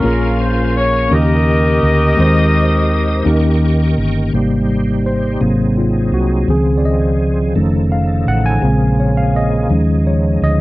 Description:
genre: gospel.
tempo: 56 BPM (dotted quarters).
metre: 6/8.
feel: straight.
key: Ab major.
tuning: A4 = 440 Hz.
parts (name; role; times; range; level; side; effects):
mellow horn section; melody; 0.0-4.0 s; Db4 to Eb5; -17 LUFS; left 1 dB; none.
tine electric piano; accompaniment; 0.0-10.6 s; Bb2 to Ab5; -16 LUFS; left 1 dB; overdrive, medium stereo tremolo.
bright tonewheel organ; sustained chords; 0.0-10.6 s; Db3 to Eb6; -22 LUFS; right 2 dB; fast rotary speaker, chorus vibrato.
hollow-body short-scale fingered electric bass; bass; 0.0-10.6 s; F1 to Eb2; -16 LUFS; equal; none.
room: little or no reverb.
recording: dry, close 1970s-style studio recording.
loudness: -12 LUFS.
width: side -19 dB against mid.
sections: 0.0-4.3 A section; 4.3-10.6 B section.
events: tine electric piano solo 4.3-10.6.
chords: 0.0 Bbm7; 1.1 Eb7; 2.2 Ab/Eb; 3.3 Eb7; 4.3 Abmaj7; 5.4 Ab7; 6.5 Dbmaj7; 7.6 Faug7; 8.6 Bbm7; 9.7 Eb9sus4.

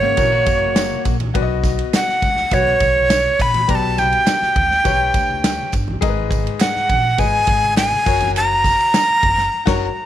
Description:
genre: uptempo 1960s-style soul.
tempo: 103 BPM.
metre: 4/4.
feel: straight.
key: B major.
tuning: A4 = 440 Hz.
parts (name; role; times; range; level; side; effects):
breathy tenor recorder; melody; 0.0-10.1 s; C#5 to B5; -16 LUFS; right 1 dB; slapback echo.
electric guitar at the edge of break-up; riff; 0.0-1.2 s; C#3 to F#4; -25 LUFS; left 16 dB; none.
upright bass; bass; 0.0-9.9 s; F#1 to D2; -23 LUFS; equal; none.
clear grand piano; accompaniment; 0.2-9.9 s; G#2 to F#5; -25 LUFS; left 12 dB; none.
natural country drum kit; drums; 0.2-9.9 s; crash cymbal, hi-hat, kick drum, ride cymbal, snare drum; -21 LUFS; equal; none.
congas; percussion; 0.2-9.4 s; none; -33 LUFS; right 1 dB; none.
tambourine and handclaps; percussion; 0.2-9.1 s; none; -32 LUFS; right 16 dB; none.
room: light reverb, small room ambience.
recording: 1960s-style stereo with parts hard left and right.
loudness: -14 LUFS.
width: side -11 dB against mid.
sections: 0.0-10.1 A section.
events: band accent 9.5-10.1.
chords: 0.0 F#; 1.3 B; 3.7 G/B; 6.0 G#m; 8.1 F#.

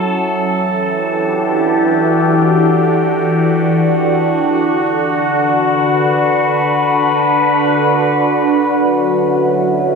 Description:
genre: ambient.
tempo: free time.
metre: none.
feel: none.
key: E dorian.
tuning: A4 = 438 Hz.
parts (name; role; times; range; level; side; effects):
evolving wavetable pad; solo; 0.0-10.0 s; D3 to B4; -12 LUFS; equal; phaser, built-in reverb, tape echo.
room: wet lush hall reverb, RT60 2.9 s.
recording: none.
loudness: -12 LUFS.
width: side -4 dB against mid.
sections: 0.0-8.7 A section; 8.7-10.0 B section.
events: none.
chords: 0.5 Em11; 4.6 D6; 8.7 F#m7.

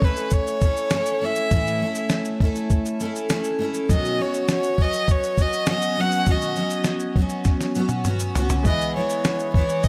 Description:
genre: acoustic pop.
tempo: 101 BPM.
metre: 4/4.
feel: straight.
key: unclear.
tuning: A4 = 440 Hz.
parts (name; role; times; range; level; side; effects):
rich violin; melody; 0.0-9.9 s; B4 to F#5; -27 LUFS; equal; delay.
picked steel-string acoustic guitar; accompaniment; 0.0-9.9 s; A2 to A4; -27 LUFS; equal; double-tracked.
dusty soul sampler-style drum kit; drums; 0.0-9.9 s; kick drum, shaker, snare drum, toms; -24 LUFS; equal; none.
bright upright piano; accompaniment; 8.6-9.9 s; G#3 to B4; -33 LUFS; equal; none.
room: light reverb, studio ambience.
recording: none.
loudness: -22 LUFS.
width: mono.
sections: 0.0-9.9 A section.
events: drum fill 7.5-8.7.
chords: 0.0 A; 3.9 Badd9; 8.7 E.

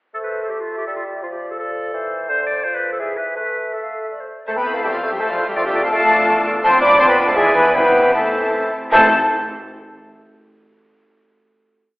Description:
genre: quick classical-period movement for symphony orchestra.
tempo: 152-172 BPM.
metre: 3/4.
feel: rubato.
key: A minor.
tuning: A4 = 439 Hz.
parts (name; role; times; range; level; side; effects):
bright clarinet; second line; 0.1-9.1 s; F4 to D5; -23 LUFS; equal; none.
bright silver concert flute; second line; 0.1-9.1 s; C5 to B5; -23 LUFS; equal; none.
warm bassoon; accompaniment; 0.1-9.1 s; D3 to A3; -25 LUFS; equal; none.
rich studio violin section; melody; 4.5-9.1 s; F5 to D6; -21 LUFS; left 1 dB; none.
rich studio violin section; second line; 4.5-9.1 s; F4 to D5; -24 LUFS; left 1 dB; none.
warm studio viola section; accompaniment; 4.5-9.1 s; C4 to F4; -26 LUFS; equal; none.
mellow French horn section; sustained chords; 4.5-9.1 s; F3 to D4; -23 LUFS; left 1 dB; none.
mellow trumpet; stabs; 4.5-9.1 s; F4 to D5; -20 LUFS; equal; none.
rich studio cello section; bass; 4.5-9.1 s; F3 to D4; -30 LUFS; equal; none.
rich studio double bass section; bass; 4.5-9.1 s; A1 to F2; -33 LUFS; equal; none.
timpani; percussion; 7.8-9.1 s; A2; -32 LUFS; equal; none.
room: wet scoring stage reverb, RT60 1.6 s.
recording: heard from further back in the room, telephone sound.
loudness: -15 LUFS.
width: side -22 dB against mid.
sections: 0.1-4.5 A section; 4.5-8.9 A section; 8.9-10.0 final chord.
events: none.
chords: 0.1 Am; 1.2 Dm/F; 2.3 Dm7; 3.0 N.C.; 3.4 A5; 4.5 Am; 5.6 Dm/F; 6.6 Dm7; 7.4 E7; 7.8 Am.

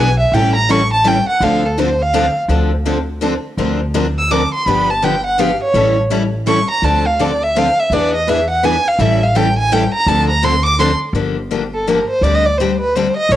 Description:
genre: acoustic string swing (jazz manouche).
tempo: 166 BPM.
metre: 3/4.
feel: swing 62% on 8ths.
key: D minor.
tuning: A4 = 440 Hz.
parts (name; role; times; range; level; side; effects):
warm violin; melody; 0.0-13.4 s; A4 to E6; -15 LUFS; right 1 dB; cassette tape.
picked steel-string acoustic guitar; accompaniment; 0.0-13.4 s; D3 to Bb4; -19 LUFS; left 7 dB; cassette tape.
picked steel-string acoustic guitar; accompaniment; 0.0-10.9 s; D3 to B4; -23 LUFS; right 7 dB; cassette tape.
upright bass; bass; 0.0-13.4 s; G1 to E2; -19 LUFS; equal; none.
room: light reverb, small room ambience.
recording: home recording on cassette.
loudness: -13 LUFS.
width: side -12 dB against mid.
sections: 0.0-2.5 A section; 2.5-11.1 A section; 11.1-13.4 A section.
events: violin solo 0.0-11.1, 11.1-13.4.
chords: 0.3 A7; 1.4 Dm7; 3.6 Bbadd9/D; 4.7 G7; 5.7 A7; 6.8 Dm7; 7.9 E7; 9.0 A7; 10.1 Dm7; 11.1 Gm7; 12.2 D7sus4.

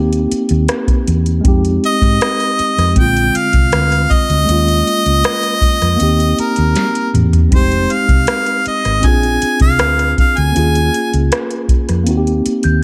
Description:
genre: lush 1970s-style soul.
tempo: 79 BPM.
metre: 4/4.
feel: straight.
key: unclear.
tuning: A4 = 440 Hz.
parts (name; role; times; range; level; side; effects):
mellow tine electric piano; accompaniment; 0.0-12.8 s; D3 to Ab4; -20 LUFS; equal; none.
hollow-body short-scale fingered electric bass; bass; 0.0-12.8 s; F1 to Ab2; -18 LUFS; equal; none.
soft vintage rhythm box; drums; 0.1-12.8 s; hi-hat, kick drum, rim click, snare drum, toms; -18 LUFS; equal; none.
bright harmonica; melody; 1.9-11.1 s; Bb4 to Ab5; -18 LUFS; equal; none.
glockenspiel with rubber mallets; texture; 12.6-12.8 s; G6; -22 LUFS; equal; none.
room: little or no reverb.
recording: none.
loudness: -14 LUFS.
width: mono.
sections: 0.0-12.8 A section.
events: drum fill 6.8-7.5.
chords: 0.0 Eb6; 1.4 Fm7; 3.0 Bb7; 4.5 Eb7sus4; 6.0 Eb6; 7.5 Fm7; 9.0 Bb7; 10.6 Eb7sus4; 12.1 Eb6.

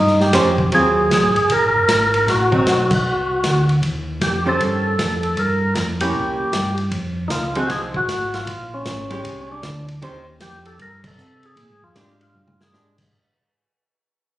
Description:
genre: soul jazz organ trio.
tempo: 155 BPM.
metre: 4/4.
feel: swing 64% on 8ths.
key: Eb mixolydian.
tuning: A4 = 438 Hz.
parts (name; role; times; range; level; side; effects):
percussive tonewheel organ; melody; 0.0-13.0 s; Db4 to Bb4; -19 LUFS; equal; slow rotary speaker.
mellow tonewheel organ; bass; 0.0-13.1 s; Gb1 to C3; -23 LUFS; equal; slow rotary speaker.
vintage drum kit; drums; 0.1-13.1 s; crash cymbal, hi-hat, kick drum, ride cymbal, snare drum, toms; -24 LUFS; equal; none.
archtop guitar, miked and amplified; accompaniment; 0.3-13.0 s; Eb3 to C5; -22 LUFS; right 1 dB; none.
room: moderate large studio reverb, RT60 0.9 s.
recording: recorded on a phone in the room, studio reverb.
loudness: -16 LUFS.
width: side -14 dB against mid.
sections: 0.0-13.1 A section.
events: fade-out 1.3-13.1; band accent 2.9, 11.0; drum fill 12.3-12.7.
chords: 0.0 Eb13; 0.7 Ab13; 2.3 Adim7; 3.8 Eb13; 5.4 Gm7; 6.1 C7b9; 6.9 Fm7; 8.5 Bb13; 10.0 Eb13; 11.6 Bb6.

